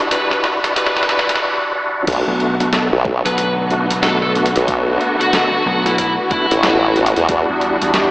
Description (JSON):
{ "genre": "glitch hop", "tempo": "92 BPM", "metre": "4/4", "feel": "swing 62% on 16ths", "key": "B minor", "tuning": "A4 = 438 Hz", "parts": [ { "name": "warm symphonic string section", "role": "sustained chords", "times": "0.0-8.1 s", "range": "D3 to F#4", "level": "-21 LUFS", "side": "equal", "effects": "vintage 12-bit sampler grit, sidechain pumping" }, { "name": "bright tonewheel organ", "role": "stabs", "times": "0.0-8.1 s", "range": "G3 to A4", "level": "-19 LUFS", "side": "equal", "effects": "chorus vibrato, fast rotary speaker, sidechain pumping, analog delay" }, { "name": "bluesy overdriven lead guitar", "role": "melody", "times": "0.1-7.0 s", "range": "E4 to B4", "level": "-21 LUFS", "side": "equal", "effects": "distortion, analog delay" }, { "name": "boom bap sampler-style drum kit", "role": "drums", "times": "0.1-8.1 s", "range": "crash cymbal, hi-hat, snare drum", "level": "-20 LUFS", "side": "equal", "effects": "none" }, { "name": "formant-sweep wobble bass", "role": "bass", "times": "2.1-7.5 s", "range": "A1 to E2", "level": "-15 LUFS", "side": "equal", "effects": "chorus" }, { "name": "electronic kick drum", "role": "drums", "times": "2.1-7.5 s", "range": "none", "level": "-27 LUFS", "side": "equal", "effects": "overdrive" }, { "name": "vintage slap bass", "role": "bass", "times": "2.3-8.1 s", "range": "B1 to E2", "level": "-21 LUFS", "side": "equal", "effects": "none" } ], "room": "wet lush hall reverb, RT60 2.0 s", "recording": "dreamy mix soaked in reverb, high-pass filter, AM radio sound", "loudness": "-13 LUFS", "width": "side -20 dB against mid", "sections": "0.0-2.1 A section; 2.1-8.1 B section", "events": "build-up 0.0-2.1; drum fill 0.0-1.4; filter sweep 0.0-2.1; break 1.4-2.1; drop 2.1-8.1", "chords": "0.0 Em9; 2.1 Bm7; 7.3 Em9" }